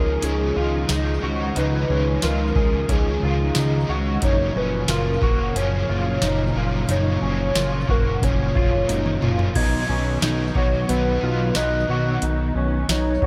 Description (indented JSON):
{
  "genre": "dream pop",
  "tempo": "90 BPM",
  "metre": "4/4",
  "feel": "straight",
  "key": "unclear",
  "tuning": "A4 = 440 Hz",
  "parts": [
    { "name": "warbly nostalgic lead", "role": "melody", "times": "0.0-13.3 s", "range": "Ab4 to Eb5", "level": "-29 LUFS", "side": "equal", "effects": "chorus, tremolo, tape echo" },
    { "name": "overdriven semi-hollow guitar", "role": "accompaniment", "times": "0.0-12.2 s", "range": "Gb2 to Eb4", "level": "-31 LUFS", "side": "equal", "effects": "harmonic tremolo, ensemble chorus, tape echo" },
    { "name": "string machine, violas", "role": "sustained chords", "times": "0.0-13.3 s", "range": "Bb2 to F5", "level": "-30 LUFS", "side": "equal", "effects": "ensemble chorus" },
    { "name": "clean electric guitar", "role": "arpeggios", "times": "0.0-13.3 s", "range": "Cb4 to Ab4", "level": "-31 LUFS", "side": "equal", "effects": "ensemble chorus, tape echo" },
    { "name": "fat analog bass", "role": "bass", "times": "0.0-13.3 s", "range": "Gb1 to Db2", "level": "-26 LUFS", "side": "equal", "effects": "none" },
    { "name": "booming analog drum machine", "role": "drums", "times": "0.2-13.3 s", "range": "crash cymbal, hi-hat, kick drum, snare drum, tambourine, toms", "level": "-25 LUFS", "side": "equal", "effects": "none" },
    { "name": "glockenspiel with soft plastic mallets", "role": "texture", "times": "9.6-12.5 s", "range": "Gb6 to Ab6", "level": "-35 LUFS", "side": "equal", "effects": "tape echo" }
  ],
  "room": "light reverb",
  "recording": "echo-heavy mix",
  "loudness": "-21 LUFS",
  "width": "mono",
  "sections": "0.0-13.3 A section",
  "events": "drum fill 8.9-9.6",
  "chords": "0.0 Dbadd9; 4.2 Gbmaj7; 9.6 Cb",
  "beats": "0.22 0.89 | 1.56 2.22 2.89 3.56 | 4.22 4.89 5.56 6.22 | 6.89 7.56 8.22 8.89 | 9.56 10.22 10.89 11.56 | 12.22 12.89"
}